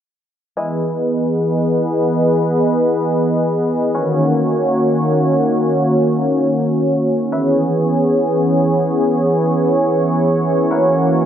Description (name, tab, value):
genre	hip hop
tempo	free time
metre	none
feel	none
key	unclear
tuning	A4 = 437 Hz
part	warm analog pad	sustained chords	0.6-11.3 s	D#3 to D#5	-14 LUFS	equal	chorus
part	bluegrass banjo	texture	0.6-11.3 s	G#3 to F#5	-28 LUFS	left 2 dB	none
room	moderate spring reverb, RT60 1.4 s, studio reverb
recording	low-pass filter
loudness	-14 LUFS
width	side -9 dB against mid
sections	0.6-11.3 A section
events	filter sweep 0.6-11.3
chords	0.6 Emaj7; 3.9 D#m7; 7.3 C#m7; 10.7 F#7